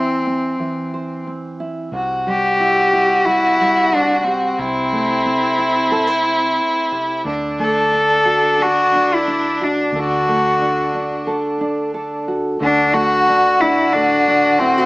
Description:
acoustic folk-pop ballad; 90 BPM; 4/4; straight; A4 = 440 Hz
rich cello; melody; 0.0-14.9 s; C4 to A4; -16 LUFS; left 1 dB
nylon-string guitar; accompaniment; 0.0-14.9 s; A2 to C5; -23 LUFS; right 1 dB
rich violin; second line; 1.9-14.9 s; D4 to F#4; -19 LUFS; equal
vintage muted fingered electric bass; bass; 1.9-14.9 s; C2 to D2; -33 LUFS; equal
moderate large studio reverb, RT60 1.2 s; small speaker sound; -14 LUFS; side -23 dB against mid
0.0-1.9 A section; 1.9-12.6 B section; 12.6-14.9 C section
0.0 C/E; 1.9 C; 4.6 Am/C; 7.3 D
0.58 1.25 | 1.92 2.59 3.26 3.93 | 4.59 5.26 5.93 6.59 | 7.26 7.93 8.60 9.26 | 9.93 10.60 11.27 11.94 | 12.61 13.28 13.94 14.61

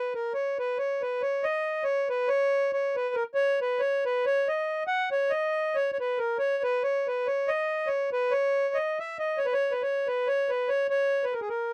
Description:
balkan folk; 278 BPM (eighths); 7/8; straight; A4 = 441 Hz
accordion; solo; 0.0-11.7 s; G#4 to F#5; -28 LUFS; equal
little or no reverb; dry, close 1970s-style studio recording; -28 LUFS; mono
0.0-11.7 A section
0.12 0.34 0.56 0.77 0.99 | 1.21 1.42 1.64 1.86 2.07 2.29 2.51 | 2.72 2.94 3.15 3.37 3.59 3.80 4.02 | 4.24 4.45 4.67 4.88 5.10 5.32 5.53 | 5.75 5.96 6.18 6.39 6.61 6.83 7.04 | 7.26 7.47 7.69 7.91 8.12 8.34 8.55 | 8.77 8.98 9.20 9.41 9.63 9.84 10.06 | 10.27 10.49 10.70 10.92 11.13 11.35 11.56

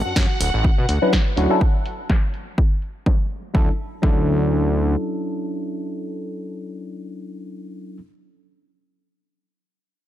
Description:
filtered disco house; 124 BPM; 4/4; swing 56% on 16ths; D major; A4 = 440 Hz
string machine, full ensemble; sustained chords; 0.0-1.6 s; F#5; -28 LUFS; equal; ensemble chorus, sidechain pumping, low-pass filter
fat analog bass; bass; 0.1-5.0 s; D1 to B2; -20 LUFS; equal; tube saturation, sidechain pumping, low-pass filter
electronic kick drum; drums; 0.2-4.2 s; -19 LUFS; equal
punchy analog drum machine; drums; 0.2-3.4 s; hi-hat, snare drum; -27 LUFS; equal; sidechain pumping on hats, low-pass filter on hats, low-pass filter on snare
tine electric piano; accompaniment; 1.0-8.0 s; F#3 to B4; -24 LUFS; left 1 dB; phaser, sidechain pumping, low-pass filter
little or no reverb; -18 LUFS; side -12 dB against mid
0.0-3.5 A section; 3.5-7.4 B section
filter sweep on drum 0.0-3.5; filter sweep 0.0-3.5
0.0 Dmaj9; 1.6 N.C.; 3.5 Dmaj9
0.16 0.65 1.13 | 1.61 2.10 2.58 3.06 | 3.55 4.03 4.52 5.00 | 5.48 5.97 6.45 6.94

